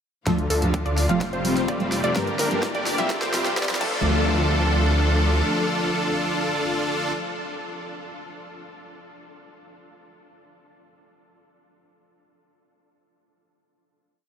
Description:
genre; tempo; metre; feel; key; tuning
EDM, festival progressive house; 127 BPM; 4/4; straight; D minor; A4 = 440 Hz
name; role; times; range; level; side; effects
fingerpicked steel-string acoustic guitar; accompaniment; 0.3-7.1 s; G2 to A4; -28 LUFS; equal; ensemble chorus, sidechain pumping, diffuse ambient delay
clear studio string section; sustained chords; 0.3-7.1 s; C3 to A4; -31 LUFS; left 1 dB; sidechain pumping
wide unison pluck; arpeggios; 0.3-7.1 s; A4 to F5; -31 LUFS; equal; cassette tape, sidechain pumping, diffuse ambient delay
dense compressed supersaw; riff; 0.3-7.1 s; A3 to F5; -26 LUFS; equal; sidechain pumping, low-pass filter, diffuse ambient delay
wide detuned saw bass; bass; 0.3-5.4 s; F1 to D2; -25 LUFS; equal; chorus, sidechain pumping
big-room dance drum kit; drums; 0.3-3.9 s; crash cymbal, hi-hat, snare drum; -32 LUFS; equal; overdrive, high-pass filter on snare, high-pass filter on hats, high-pass filter on cymbals
electronic kick drum; drums; 0.3-3.9 s; none; -31 LUFS; equal; overdrive, high-pass filter on kick
riser; sound effects; 2.4-4.0 s; none; -38 LUFS; equal; none
room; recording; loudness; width
wet huge ambient reverb, RT60 8.8 s; dreamy mix soaked in reverb, high-pass filter; -20 LUFS; side -8 dB against mid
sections
0.3-4.0 build; 4.0-7.8 final hit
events
build-up 0.3-4.0; drum fill 0.3-4.0; filter sweep on supersaw synth 0.3-4.0; filter sweep 0.3-4.0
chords
0.3 Fadd9; 2.2 Gm; 3.1 Csus4; 3.8 Dm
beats
| 0.27 0.74 1.21 1.68 | 2.16 2.63 3.10 3.57 | 4.05 4.52 4.99 5.46 | 5.94 6.41 6.88

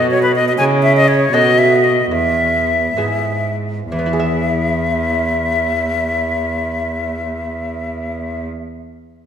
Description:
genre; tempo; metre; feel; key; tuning
classical, baroque-style sonata movement with continuo; 61-85 BPM (dotted quarters); 6/8; straight; E major; A4 = 440 Hz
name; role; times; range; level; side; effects
silver concert flute; melody; 0.0-8.4 s; B4 to G#5; -17 LUFS; left 2 dB; none
lute; accompaniment; 0.0-8.7 s; E2 to E5; -21 LUFS; right 1 dB; none
warm cello; bass; 0.0-8.5 s; E2 to C#3; -19 LUFS; right 2 dB; none
room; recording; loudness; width
wet scoring stage reverb, RT60 1.6 s; minimal, uncompressed stereo recording; -14 LUFS; side -8 dB against mid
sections
0.0-3.9 A section; 3.9-7.8 B section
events
slowing down 0.0-3.9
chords
0.0 B5; 0.6 C#m; 1.3 B5; 2.1 E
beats
| 0.59 1.33 | 2.11 2.97 | 3.91 4.88 | 5.86 6.83

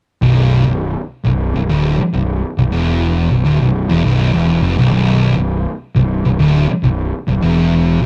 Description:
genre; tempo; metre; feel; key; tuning
metal; 102 BPM; 4/4; straight; B minor; A4 = 444 Hz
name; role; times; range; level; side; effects
thick fuzz guitar; riff; 0.2-8.1 s; B1 to E#2; -18 LUFS; equal; distortion
thick fuzz guitar; riff; 0.2-8.1 s; B1 to E#2; -20 LUFS; equal; distortion
fuzz picked electric bass; bass; 0.2-8.1 s; B0 to E#1; -20 LUFS; equal; overdrive
room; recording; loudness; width
little or no reverb; dry, close 1970s-style studio recording; -15 LUFS; mono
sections
0.2-8.1 A section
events
none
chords
0.2 Bm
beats
| 0.23 0.82 1.40 1.99 | 2.58 3.16 3.75 4.34 | 4.92 5.51 6.10 6.69 | 7.28 7.87

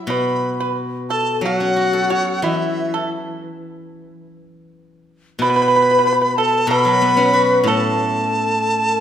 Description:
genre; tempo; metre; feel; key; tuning
chinese traditional, Chinese chamber ensemble; 90 BPM; 4/4; rubato; A gong mode; A4 = 442 Hz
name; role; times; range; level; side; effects
steel-string zither; accompaniment; 0.0-9.0 s; A2 to C#5; -22 LUFS; left 1 dB; none
mellow dizi; melody; 0.1-9.0 s; E5 to B5; -19 LUFS; equal; none
low xiao; second line; 0.1-9.0 s; E4 to C#5; -21 LUFS; left 2 dB; none
pipa; second line; 0.1-9.0 s; E4 to B4; -23 LUFS; right 6 dB; none
room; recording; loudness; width
wet recital hall reverb, RT60 1.8 s; none; -15 LUFS; side -9 dB against mid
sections
0.0-9.0 A section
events
none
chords
none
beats
| 0.09 0.77 1.44 2.11 | 2.77 3.43 4.10 4.76 | 5.41 6.05 6.68 7.34 | 8.00 8.67

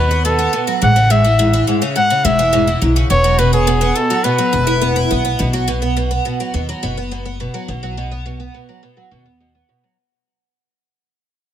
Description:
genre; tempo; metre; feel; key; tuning
folktronica; 105 BPM; 4/4; straight; B mixolydian; A4 = 440 Hz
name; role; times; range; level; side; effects
clear flugelhorn; melody; 0.0-5.1 s; G#4 to F#5; -16 LUFS; left 1 dB; ping-pong delay
picked twelve-string acoustic guitar; arpeggios; 0.0-10.0 s; G#2 to E4; -18 LUFS; right 1 dB; analog chorus, low-pass filter
upright bass; bass; 0.0-9.6 s; E1 to D#2; -18 LUFS; equal; none
room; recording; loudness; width
light reverb, studio reverb; none; -13 LUFS; side -10 dB against mid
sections
0.0-5.4 A section; 5.4-10.0 B section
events
fade-out 5.4-10.0; filter sweep on twelve-string acoustic guitar 5.4-10.0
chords
0.0 B; 0.8 Amaj7; 3.1 Esus2; 5.4 B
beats
0.25 | 0.82 1.40 1.97 2.54 | 3.11 3.68 4.25 4.83 | 5.40 5.97 6.54 7.11 | 7.68 8.25 8.82 9.40

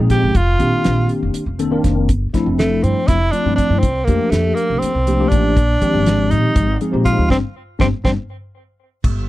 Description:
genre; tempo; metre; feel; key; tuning
electric jazz fusion; 242 BPM (eighths); 7/8; straight; unclear; A4 = 440 Hz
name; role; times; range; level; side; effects
bright tine electric piano; accompaniment; 0.0-8.1 s; Eb3 to Bb4; -19 LUFS; left 2 dB; medium stereo tremolo, ensemble chorus
upright bass; bass; 0.0-9.2 s; F1 to Bb2; -18 LUFS; equal; none
clear tenor saxophone; melody; 0.1-8.1 s; A3 to G4; -19 LUFS; right 2 dB; none
damped 70s drum kit; drums; 0.1-9.2 s; crash cymbal, hi-hat, kick drum, snare drum; -18 LUFS; equal; none
room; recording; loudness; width
little or no reverb; dry, close 1970s-style studio recording; -14 LUFS; side -16 dB against mid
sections
0.0-9.1 A section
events
band accent 7.3-9.1; drum fill 8.3-9.1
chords
0.4 F13sus4; 2.1 G13sus4; 3.8 C13sus4; 5.6 Bb13sus4; 7.3 Gsus4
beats
0.10 | 0.35 0.60 0.85 1.10 1.35 1.59 1.84 | 2.09 2.34 2.59 2.84 3.08 3.33 3.58 | 3.83 4.08 4.33 4.58 4.82 5.07 5.32 | 5.57 5.82 6.07 6.32 6.56 6.81 7.06 | 7.31 7.56 7.81 8.06 8.30 8.55 8.80 | 9.05

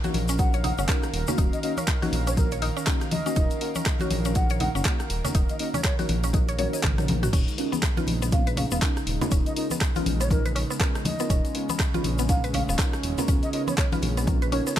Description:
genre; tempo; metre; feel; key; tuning
afro house; 121 BPM; 4/4; swing 59% on 16ths; Eb minor; A4 = 441 Hz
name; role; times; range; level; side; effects
warm analog pad; sustained chords; 0.0-14.8 s; Db3 to F5; -34 LUFS; right 2 dB; chorus, sidechain pumping
mallet-like synth pluck; arpeggios; 0.0-14.8 s; Cb4 to Eb5; -33 LUFS; equal; chorus, phaser, sidechain pumping, ping-pong delay
deep mellow chord stab; stabs; 0.0-14.8 s; Bb3 to Db5; -33 LUFS; left 1 dB; chorus, phaser, sidechain pumping, ping-pong delay
deep house drum kit; drums; 0.0-14.8 s; crash cymbal, handclaps, hi-hat, rim click, toms; -31 LUFS; equal; none
congas; percussion; 0.0-14.4 s; none; -31 LUFS; left 2 dB; none
tube shaker; percussion; 0.0-14.8 s; none; -38 LUFS; left 5 dB; none
smooth gliding synth bass; bass; 0.1-14.6 s; Eb1 to Bb1; -28 LUFS; equal; sidechain pumping
mellow bass bansuri; melody; 0.4-14.7 s; Bb4 to Gb5; -34 LUFS; equal; ping-pong delay
electronic kick drum; drums; 0.4-14.8 s; none; -24 LUFS; equal; none
room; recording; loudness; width
digital ambience; none; -22 LUFS; side -11 dB against mid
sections
0.0-14.8 A section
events
drum fill 6.6-7.3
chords
0.0 Ebm7; 7.3 Db13/Eb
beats
0.39 0.89 | 1.38 1.88 2.37 2.87 | 3.37 3.86 4.36 4.85 | 5.35 5.84 6.34 6.84 | 7.33 7.83 8.32 8.82 | 9.32 9.81 10.31 10.80 | 11.30 11.80 12.29 12.79 | 13.28 13.78 14.28 14.77

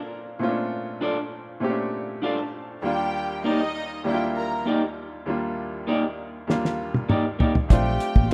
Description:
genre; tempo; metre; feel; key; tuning
lush 1970s-style soul; 99 BPM; 4/4; straight; unclear; A4 = 439 Hz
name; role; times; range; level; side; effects
clear baby grand piano; accompaniment; 0.0-8.3 s; Eb2 to A5; -30 LUFS; equal; none
electric guitar through a small old amp; riff; 1.0-8.3 s; Bb3 to D5; -29 LUFS; equal; none
warm studio string section; second line; 2.8-8.3 s; Eb4 to Bb5; -32 LUFS; equal; none
cloth-damped thuddy drum kit; drums; 6.5-8.3 s; hi-hat, kick drum, snare drum, toms; -21 LUFS; equal; none
vintage muted fingered electric bass; bass; 7.7-8.3 s; A1 to Bb1; -27 LUFS; equal; none
congas; percussion; 7.7-8.3 s; none; -33 LUFS; equal; none
room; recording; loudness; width
light reverb, studio reverb; rough home demo mix; -25 LUFS; mono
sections
0.0-8.3 A section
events
grand piano fill 1.9-2.8; drum fill 6.5-7.7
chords
0.0 Bbmaj7; 2.8 Ebmaj7; 7.7 Bbmaj7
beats
| 0.40 1.01 1.62 2.23 | 2.83 3.44 4.05 4.66 | 5.27 5.88 6.48 7.09 | 7.70 8.31

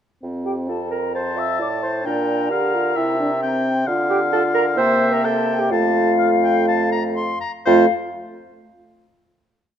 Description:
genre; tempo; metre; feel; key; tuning
quick classical-period movement for wind quintet; 121-133 BPM; 4/4; straight; F major; A4 = 440 Hz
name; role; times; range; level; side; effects
warm French horn; accompaniment; 0.2-7.9 s; A3 to G4; -24 LUFS; left 1 dB; none
warm bassoon; bass; 0.2-7.9 s; F2 to D3; -24 LUFS; right 2 dB; none
mellow hollow silver concert flute; melody; 0.4-7.9 s; F5 to E6; -24 LUFS; left 9 dB; none
dark clarinet; accompaniment; 0.5-7.9 s; F4 to E5; -22 LUFS; right 6 dB; none
clear oboe; second line; 1.2-7.9 s; C5 to C6; -25 LUFS; left 4 dB; none
room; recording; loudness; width
moderate recital hall reverb, RT60 1.8 s; close, detailed microphones; -17 LUFS; side -9 dB against mid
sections
0.2-7.7 A section; 7.7-9.6 final chord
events
none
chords
0.2 F; 2.1 Bb; 3.0 C7; 3.9 Dm; 4.8 C7; 5.7 F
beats
| 0.22 0.69 1.15 1.61 | 2.06 2.52 2.97 3.43 | 3.88 4.33 4.79 5.25 | 5.71 6.19 6.68 7.17 | 7.66

